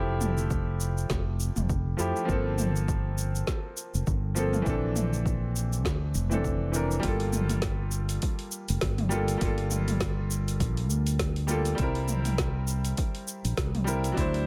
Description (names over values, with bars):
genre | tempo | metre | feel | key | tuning
sunset chillout | 101 BPM | 4/4 | swing 57% on 16ths | G dorian | A4 = 441 Hz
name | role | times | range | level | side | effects
clear baby grand piano | accompaniment | 0.0-14.5 s | E3 to C5 | -34 LUFS | equal | tape echo
mellow fretless electric bass | bass | 0.0-14.5 s | F1 to F2 | -31 LUFS | equal | subtle chorus
deep house drum kit | drums | 0.2-14.4 s | hi-hat, shaker, snare drum, toms | -36 LUFS | equal | none
electronic kick drum | drums | 0.5-14.3 s | none | -34 LUFS | equal | none
room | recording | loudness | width
little or no reverb | none | -28 LUFS | mono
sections
0.0-7.0 A section; 7.0-14.5 B section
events
none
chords
0.0 Fmaj9; 2.3 Gm11; 4.7 Bbmaj9#11; 7.0 Gm9; 11.8 C7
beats
0.50 1.10 1.69 | 2.29 2.88 3.48 4.07 | 4.66 5.26 5.85 6.45 | 7.04 7.63 8.23 8.82 | 9.41 10.01 10.60 11.20 | 11.79 12.39 12.98 13.57 | 14.17